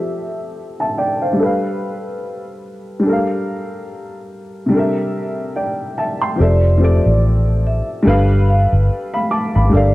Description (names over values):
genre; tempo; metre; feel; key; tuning
lo-fi hip hop; 72 BPM; 4/4; swing 58% on 16ths; F major; A4 = 437 Hz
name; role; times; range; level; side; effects
dark upright piano; accompaniment; 0.0-9.9 s; C3 to D6; -18 LUFS; equal; low-pass filter
vibraphone with soft mallets; melody; 6.4-9.9 s; D5 to F5; -23 LUFS; right 1 dB; low-pass filter, tape echo
vintage muted fingered electric bass; bass; 6.4-9.9 s; F1 to A1; -13 LUFS; equal; none
room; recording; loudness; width
light reverb, small room ambience; cassette tape; -14 LUFS; side -18 dB against mid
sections
0.0-6.4 A section; 6.4-9.9 B section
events
filter sweep 0.0-6.4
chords
0.0 Fmaj7; 1.4 G9; 3.1 Gm9; 4.7 C13; 6.4 Fmaj7; 8.1 G9